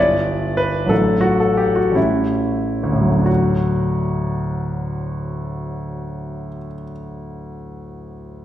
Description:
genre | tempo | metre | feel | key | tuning
classical, romantic character piece for solo piano | 41-68 BPM (dotted quarters) | 6/8 | rubato | D major | A4 = 440 Hz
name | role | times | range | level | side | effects
clear concert grand piano | solo | 0.0-8.4 s | G1 to D5 | -18 LUFS | equal | none
room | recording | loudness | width
wet recital hall reverb, RT60 1.8 s | heard from further back in the room | -17 LUFS | side -12 dB against mid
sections
0.0-3.3 A section; 3.3-8.4 B section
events
slowing down 0.0-3.3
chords
0.0 Em7/G; 0.9 D/A; 2.0 A7; 3.3 D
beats
| 0.90 1.96 | 3.27 4.51 | 5.81 7.10

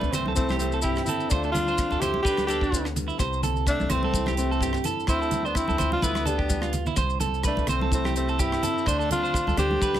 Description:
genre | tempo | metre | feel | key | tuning
highlife guitar band | 127 BPM | 4/4 | swing 55% on 16ths | C major | A4 = 440 Hz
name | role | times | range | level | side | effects
breathy tenor saxophone | melody | 0.0-10.0 s | C4 to G4 | -27 LUFS | equal | slapback echo, plate reverb
bright alto saxophone | second line | 0.0-10.0 s | A3 to E4 | -35 LUFS | left 5 dB | plate reverb
nylon-string guitar | accompaniment | 0.0-10.0 s | G2 to G4 | -35 LUFS | left 7 dB | plate reverb
electric guitar at the edge of break-up | arpeggios | 0.0-10.0 s | D4 to C5 | -30 LUFS | right 8 dB | slapback echo, plate reverb
upright bass | bass | 0.0-10.0 s | C2 to D2 | -29 LUFS | equal | none
congas | percussion | 0.0-10.0 s | none | -33 LUFS | right 1 dB | none
maracas | percussion | 0.0-10.0 s | none | -36 LUFS | left 5 dB | none
tight funk drum kit | drums | 0.1-10.0 s | hi-hat, kick drum, rim click | -30 LUFS | equal | none
room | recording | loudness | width
light reverb | none | -22 LUFS | side -11 dB against mid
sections
0.0-10.0 A section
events
drum fill 6.5-7.0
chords
0.0 C6; 1.3 Dm7; 2.2 G/D; 3.2 C6; 5.1 Dm7; 6.0 G/D; 7.0 C6; 8.9 Dm7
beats
0.36 0.84 | 1.31 1.78 2.25 2.72 | 3.19 3.67 4.14 4.61 | 5.08 5.55 6.03 6.50 | 6.97 7.45 7.92 8.40 | 8.87 9.35 9.82

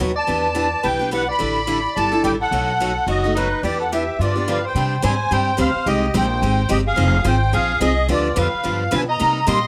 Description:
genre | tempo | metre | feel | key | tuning
acoustic string swing (jazz manouche) | 215 BPM | 4/4 | swing 58% on 8ths | E minor, C minor from 4.8 s | A4 = 439 Hz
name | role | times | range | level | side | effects
picked steel-string acoustic guitar | accompaniment | 0.0-9.6 s | B2 to A4 | -25 LUFS | equal | none
upright bass | bass | 0.0-9.7 s | F1 to C3 | -25 LUFS | equal | none
musette accordion | melody | 0.2-9.7 s | B4 to C6 | -24 LUFS | equal | none
warm soprano saxophone | second line | 0.2-9.7 s | D#4 to Eb5 | -28 LUFS | equal | none
room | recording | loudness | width
moderate studio reverb, RT60 0.8 s | none | -19 LUFS | mono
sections
0.0-4.8 A section; 4.8-9.7 B section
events
none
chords
0.3 Em7; 1.4 A7sus4; 2.5 B7; 3.6 Em7; 4.2 G7; 4.8 Csus2; 5.9 Abmaj7; 7.0 Fm7; 8.1 G7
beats
0.00 | 0.28 0.56 0.84 1.12 | 1.40 1.68 1.96 2.24 | 2.52 2.80 3.08 3.36 | 3.63 3.91 4.19 4.47 | 4.75 5.03 5.31 5.58 | 5.86 6.14 6.42 6.70 | 6.97 7.25 7.53 7.81 | 8.09 8.36 8.64 8.92 | 9.20 9.47

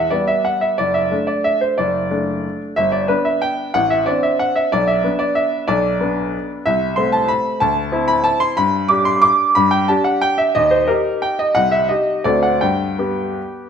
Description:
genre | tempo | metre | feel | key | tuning
classical, piano waltz | 155-197 BPM | 3/4 | rubato | G major | A4 = 436 Hz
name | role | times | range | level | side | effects
bright baby grand piano | solo | 0.0-13.7 s | F#1 to D6 | -15 LUFS | equal | none
room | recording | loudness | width
moderate recital hall reverb, RT60 1.5 s | none | -15 LUFS | side -7 dB against mid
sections
0.0-13.7 A section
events
none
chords
0.0 Em; 0.8 D/F#; 2.8 G; 3.8 D5/A; 4.7 Bmadd11; 6.7 Am/C; 7.6 Dsus2; 8.6 G; 10.5 Eb; 11.6 Cm; 12.2 D7; 12.6 G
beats
0.12 0.46 | 0.79 1.12 1.45 | 1.78 2.11 2.44 | 2.77 3.09 3.43 | 3.75 4.08 4.41 | 4.73 5.05 5.37 | 5.69 6.01 6.34 | 6.66 6.97 7.29 | 7.61 7.92 8.25 | 8.57 8.89 9.23 | 9.56 9.89 10.22 | 10.55 10.88 11.22 | 11.56 11.89 12.24 | 12.61 12.98 13.37

